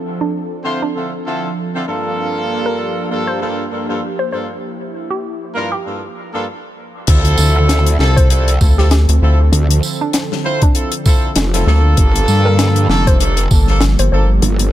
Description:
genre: glitch hop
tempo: 98 BPM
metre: 4/4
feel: swing 57% on 16ths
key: G dorian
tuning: A4 = 441 Hz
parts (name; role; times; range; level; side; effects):
- warm analog pad; sustained chords; 0.0-14.7 s; D3 to A4; -24 LUFS; right 2 dB; chorus, sidechain pumping
- woody wave-folded pluck; melody; 0.2-14.2 s; D4 to C5; -24 LUFS; equal; chorus, dub echo
- mellow horn section; stabs; 0.6-14.3 s; G2 to C5; -20 LUFS; equal; sidechain pumping, low-pass filter, dub echo
- growl bass; bass; 7.1-14.7 s; F1 to G2; -13 LUFS; equal; chorus, tube saturation
- deep reggae drum kit; drums; 7.1-14.7 s; crash cymbal, hi-hat, snare drum, tambourine; -20 LUFS; left 3 dB; none
- electronic kick drum; drums; 7.1-13.7 s; none; -12 LUFS; equal; none
- rubbery square bass; bass; 8.6-14.4 s; G1 to D2; -11 LUFS; equal; none
room: little or no reverb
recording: none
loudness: -12 LUFS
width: side -13 dB against mid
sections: 0.0-7.1 A section; 7.1-14.7 B section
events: drop 7.1-14.7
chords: 0.0 Gm7; 7.1 Dm7; 12.0 Gm7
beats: 0.34 0.96 1.57 | 2.18 2.79 3.41 4.02 | 4.63 5.24 5.86 6.47 | 7.08 7.69 8.30 8.92 | 9.53 10.14 10.75 11.37 | 11.98 12.59 13.20 13.81 | 14.43

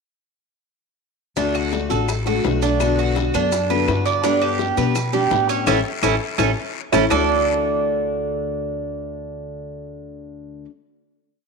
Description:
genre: latin, Cuban son and guajira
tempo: 167 BPM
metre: 4/4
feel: straight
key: D major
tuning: A4 = 436 Hz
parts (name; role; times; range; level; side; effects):
- picked steel-string acoustic guitar; accompaniment; 1.4-10.7 s; B2 to G4; -24 LUFS; left 12 dB; none
- Cuban tres; arpeggios; 1.4-10.7 s; C#4 to D5; -21 LUFS; right 8 dB; none
- upright bass; bass; 1.4-10.6 s; A1 to B2; -26 LUFS; left 1 dB; none
- bongos; percussion; 1.4-7.2 s; none; -29 LUFS; left 12 dB; none
- guiro; percussion; 1.4-7.2 s; none; -35 LUFS; left 14 dB; none
- maracas; percussion; 1.4-7.2 s; none; -36 LUFS; right 12 dB; none
- claves; percussion; 1.5-7.2 s; none; -31 LUFS; left 14 dB; none
room: moderate echo chamber reverb, RT60 1.8 s, small room ambience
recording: 1960s-style stereo with parts hard left and right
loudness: -18 LUFS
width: side -4 dB against mid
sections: 1.4-7.1 verse; 7.1-10.0 final chord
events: band accent 5.7-7.1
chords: 1.4 D; 2.8 Bm; 4.2 G; 5.7 A; 7.1 D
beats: | 1.37 1.73 2.09 2.45 | 2.81 3.17 3.52 3.88 | 4.24 4.60 4.96 5.32 | 5.67 6.03 6.39 6.75 | 7.11 7.47 7.83 8.18 | 8.54 8.90 9.26 9.62

